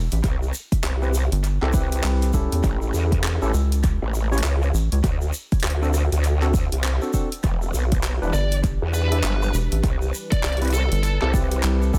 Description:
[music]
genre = glitch hop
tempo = 100 BPM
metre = 4/4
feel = swing 61% on 16ths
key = unclear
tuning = A4 = 440 Hz
[part]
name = rubbery square bass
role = bass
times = 0.0-12.0 s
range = E1 to E2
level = -23 LUFS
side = equal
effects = none
[part]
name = pop drum kit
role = drums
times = 0.0-11.8 s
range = handclaps, hi-hat, rim click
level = -34 LUFS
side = equal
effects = analog delay
[part]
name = egg shaker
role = percussion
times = 0.1-12.0 s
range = none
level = -40 LUFS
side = equal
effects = analog delay
[part]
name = growl bass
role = bass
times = 0.2-11.6 s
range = E1 to E2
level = -24 LUFS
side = equal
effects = chorus, tube saturation
[part]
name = electronic kick drum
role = drums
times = 0.2-12.0 s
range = none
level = -25 LUFS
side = equal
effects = none
[part]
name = bright tine electric piano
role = stabs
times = 1.0-12.0 s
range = C4 to E5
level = -32 LUFS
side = equal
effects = sidechain pumping, low-pass filter, analog delay
[part]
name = warbly tape-like pad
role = sustained chords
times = 8.1-12.0 s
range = E3 to B4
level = -37 LUFS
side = equal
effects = chorus, built-in reverb, phaser, sidechain pumping
[part]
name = high-gain lead guitar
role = melody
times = 8.3-11.3 s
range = A4 to D5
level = -32 LUFS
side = equal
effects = distortion, analog delay
[sound]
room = little or no reverb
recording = echo-heavy mix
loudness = -22 LUFS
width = mono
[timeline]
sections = 0.0-12.0 A section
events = none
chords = 0.2 Cmaj7; 2.6 A7; 5.0 D7; 7.4 Em7; 9.8 Cmaj7

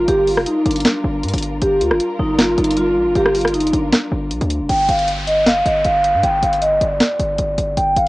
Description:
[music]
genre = hip hop, trap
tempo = 156 BPM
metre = 4/4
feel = half-time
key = G minor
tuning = A4 = 440 Hz
[part]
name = vibraphone with soft mallets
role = melody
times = 0.0-8.1 s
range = D4 to G5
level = -16 LUFS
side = equal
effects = low-pass filter, cassette tape
[part]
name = dark studio string section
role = sustained chords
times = 0.0-4.7 s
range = G3 to Bb4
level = -27 LUFS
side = equal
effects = cassette tape
[part]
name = hard-hitting 808-style bass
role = bass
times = 0.0-8.1 s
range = F1 to G2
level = -22 LUFS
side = equal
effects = none
[part]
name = trap drum kit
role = drums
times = 0.1-8.1 s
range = hi-hat, rim click, snare drum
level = -19 LUFS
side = equal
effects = cassette tape
[part]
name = downlifter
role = sound effects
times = 4.7-7.8 s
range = none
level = -28 LUFS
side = equal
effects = none
[sound]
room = small room ambience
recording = home recording on cassette, nothing above 10.3 kHz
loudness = -14 LUFS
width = side -20 dB against mid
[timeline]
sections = 0.0-4.7 A section; 4.7-8.1 B section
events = filter sweep on vibraphone 4.7-8.1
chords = 0.0 Gm7; 4.7 G5

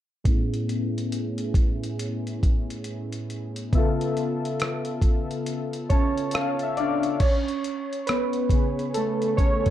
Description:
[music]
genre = lo-fi hip hop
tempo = 69 BPM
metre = 4/4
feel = swing 64% on 16ths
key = A major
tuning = A4 = 440 Hz
[part]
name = warbly lo-fi synth keys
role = accompaniment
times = 0.2-9.7 s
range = A2 to A5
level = -25 LUFS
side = equal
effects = chorus, low-pass filter, plate reverb
[part]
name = dusty soul sampler-style drum kit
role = drums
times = 0.3-9.7 s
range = crash cymbal, hi-hat, kick drum, rim click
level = -24 LUFS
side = equal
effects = none
[sound]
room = light reverb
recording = dark, warm production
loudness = -23 LUFS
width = side -12 dB against mid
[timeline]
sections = 0.3-7.2 A section; 7.2-9.7 B section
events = filter sweep on synth keys 0.3-7.2; synth keys fill 5.5-7.2; synth keys solo 7.2-9.7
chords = 0.3 Amaj7; 3.7 C#7alt; 7.2 Amaj7

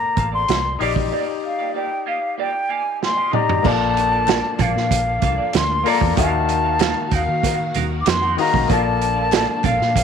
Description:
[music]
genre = lush 1970s-style soul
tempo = 95 BPM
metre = 4/4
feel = straight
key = Bb major from 3.6 s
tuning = A4 = 440 Hz
[part]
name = mellow silver concert flute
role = melody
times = 0.0-10.0 s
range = F5 to D6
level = -21 LUFS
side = left 2 dB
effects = none
[part]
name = clear baby grand piano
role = accompaniment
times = 0.0-10.0 s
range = Eb3 to F5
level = -24 LUFS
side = left 13 dB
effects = none
[part]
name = clean electric guitar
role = riff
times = 0.0-10.0 s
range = Bb3 to Gb5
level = -28 LUFS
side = right 11 dB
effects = wah
[part]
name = vintage muted fingered electric bass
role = bass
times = 0.2-10.0 s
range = A1 to Eb3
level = -24 LUFS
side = equal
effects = none
[part]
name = vintage drum kit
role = drums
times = 0.2-10.0 s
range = crash cymbal, hi-hat, kick drum, snare drum, toms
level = -22 LUFS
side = right 6 dB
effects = none
[part]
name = congas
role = percussion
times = 0.2-9.8 s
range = none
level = -30 LUFS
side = right 9 dB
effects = none
[part]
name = string machine, violins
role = sustained chords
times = 3.6-10.0 s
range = Eb3 to F5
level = -31 LUFS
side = equal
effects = ensemble chorus
[part]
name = group handclap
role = percussion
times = 4.3-9.8 s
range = none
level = -37 LUFS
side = left 14 dB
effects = none
[sound]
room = moderate spring reverb, RT60 2.5 s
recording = 1960s-style stereo with parts hard left and right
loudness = -17 LUFS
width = side -7 dB against mid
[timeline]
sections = 0.0-3.6 A section; 3.6-10.0 B section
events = break 1.1-3.6; drum fill 3.0-3.6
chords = 0.0 Bbmaj9; 0.8 Ebmaj9/Bb; 3.6 Bbmaj7; 6.2 Ebmadd9; 8.7 Bbmaj7

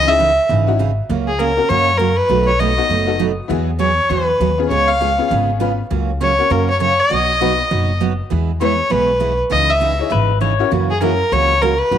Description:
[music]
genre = country, western swing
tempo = 200 BPM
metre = 4/4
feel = swing 61% on 8ths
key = unclear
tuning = A4 = 440 Hz
[part]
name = rich fiddle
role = melody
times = 0.0-12.0 s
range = G#4 to E#5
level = -16 LUFS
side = left 1 dB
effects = none
[part]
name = picked steel-string acoustic guitar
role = accompaniment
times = 0.0-12.0 s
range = B2 to G#4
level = -21 LUFS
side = right 10 dB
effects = none
[part]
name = upright bass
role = bass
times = 0.0-12.0 s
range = F#1 to F#2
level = -20 LUFS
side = left 1 dB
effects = none
[part]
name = tack piano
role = accompaniment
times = 0.1-11.2 s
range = A#3 to C#5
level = -23 LUFS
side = left 12 dB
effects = none
[part]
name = pedal steel guitar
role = second line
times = 10.1-10.7 s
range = B4 to C#5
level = -21 LUFS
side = left 11 dB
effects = none
[sound]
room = moderate spring reverb, RT60 2.1 s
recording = 1960s-style stereo with parts hard left and right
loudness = -14 LUFS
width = side -9 dB against mid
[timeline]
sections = 0.0-12.0 A section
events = none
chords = 0.0 C#madd9; 1.1 F#/C#; 2.3 B7; 3.5 Eadd9; 4.7 C#7; 5.9 F#/C#; 7.1 B; 8.3 E; 9.5 C#madd9; 10.7 F#7

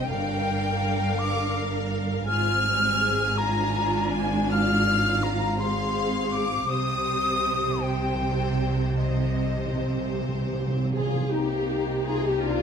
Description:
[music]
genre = cinematic, emotional film score for orchestra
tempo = 50-56 BPM (dotted quarters)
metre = 6/8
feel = rubato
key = C minor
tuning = A4 = 440 Hz
[part]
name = warm symphonic violin section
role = melody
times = 0.0-12.6 s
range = D4 to Ab5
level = -34 LUFS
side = left 4 dB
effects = none
[part]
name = hollow concert flute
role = second line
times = 0.0-12.5 s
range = Eb5 to F6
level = -28 LUFS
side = left 2 dB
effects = none
[part]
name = warm symphonic violin section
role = second line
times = 0.0-12.6 s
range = F4 to F6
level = -32 LUFS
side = left 2 dB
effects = none
[part]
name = warm symphonic viola section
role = accompaniment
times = 0.0-12.6 s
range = G3 to Bb4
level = -30 LUFS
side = right 1 dB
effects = none
[part]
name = warm studio double bass section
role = bass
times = 0.0-12.6 s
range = G1 to C2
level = -30 LUFS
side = right 2 dB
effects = none
[part]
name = warm symphonic cello section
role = bass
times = 0.0-12.6 s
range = G2 to C3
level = -30 LUFS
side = right 2 dB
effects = none
[part]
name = timpani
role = percussion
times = 0.1-1.2, 6.7-11.3 s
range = G2 to C3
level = -32 LUFS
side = equal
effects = none
[part]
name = mellow clarinet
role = second line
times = 11.3-12.6 s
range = Eb4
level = -32 LUFS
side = left 5 dB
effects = none
[part]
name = warm French horn section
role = sustained chords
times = 11.3-12.6 s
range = Bb3 to G4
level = -32 LUFS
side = left 5 dB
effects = none
[sound]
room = moderate scoring stage reverb, RT60 1.5 s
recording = none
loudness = -22 LUFS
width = side -7 dB against mid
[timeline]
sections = 0.0-11.3 A section; 11.3-12.6 B section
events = timpani fill 6.7-11.3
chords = 0.1 Gm7; 2.3 Fm/Ab; 6.7 Cm; 11.3 Cm7

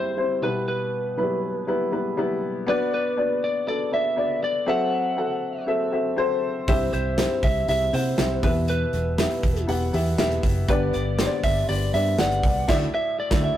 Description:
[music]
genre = piano-driven pop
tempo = 120 BPM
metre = 4/4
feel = straight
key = E minor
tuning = A4 = 439 Hz
[part]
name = lightly driven lead guitar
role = melody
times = 0.0-13.6 s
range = B4 to F#5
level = -26 LUFS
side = right 1 dB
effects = none
[part]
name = dark upright piano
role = accompaniment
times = 0.0-13.6 s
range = G2 to F#5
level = -24 LUFS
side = left 2 dB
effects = none
[part]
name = vintage muted fingered electric bass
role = bass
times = 6.7-13.5 s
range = E1 to C3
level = -26 LUFS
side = equal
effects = none
[part]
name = modern studio drum kit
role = drums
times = 6.7-13.4 s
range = crash cymbal, hi-hat, kick drum, snare drum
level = -25 LUFS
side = right 1 dB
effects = none
[sound]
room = light reverb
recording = rough rehearsal-room recording, warm saturation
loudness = -21 LUFS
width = side -12 dB against mid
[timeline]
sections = 0.0-13.6 A section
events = band accent 12.7-13.6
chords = 0.4 Em; 2.7 Bm; 4.7 F#m7b5; 6.7 C; 8.4 Em; 10.7 G; 12.7 Dadd9

